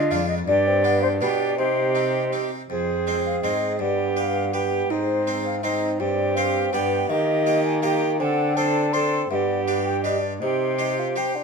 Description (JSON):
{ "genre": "classical, renaissance-style consort dance", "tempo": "163 BPM", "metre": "3/4", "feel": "straight", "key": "unclear", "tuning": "A4 = 441 Hz", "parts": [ { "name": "wooden flute", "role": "melody", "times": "0.0-11.3 s", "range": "B4 to C6", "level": "-26 LUFS", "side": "left 3 dB", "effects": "none" }, { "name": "bright tenor recorder", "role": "second line", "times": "0.0-11.3 s", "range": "Eb4 to A4", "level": "-26 LUFS", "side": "right 9 dB", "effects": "none" }, { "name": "harpsichord", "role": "accompaniment", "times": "0.0-11.4 s", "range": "F2 to Eb5", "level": "-28 LUFS", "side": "equal", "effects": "none" }, { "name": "mellow bassoon", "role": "accompaniment", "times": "0.0-11.4 s", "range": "Bb3 to G4", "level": "-28 LUFS", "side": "left 3 dB", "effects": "none" }, { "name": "rich cello", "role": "bass", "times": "0.0-11.3 s", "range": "F2 to Eb3", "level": "-28 LUFS", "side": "equal", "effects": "none" } ], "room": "moderate stone room reverb, RT60 1.0 s", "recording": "none", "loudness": "-20 LUFS", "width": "side -5 dB against mid", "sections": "0.0-2.7 A section; 2.7-11.4 B section", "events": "none", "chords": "0.5 G; 1.6 Cm; 2.7 Fm; 3.8 G; 4.9 Ab; 6.0 Gsus4; 6.7 G; 7.1 Eb; 8.2 D7; 9.3 G; 10.4 Cm" }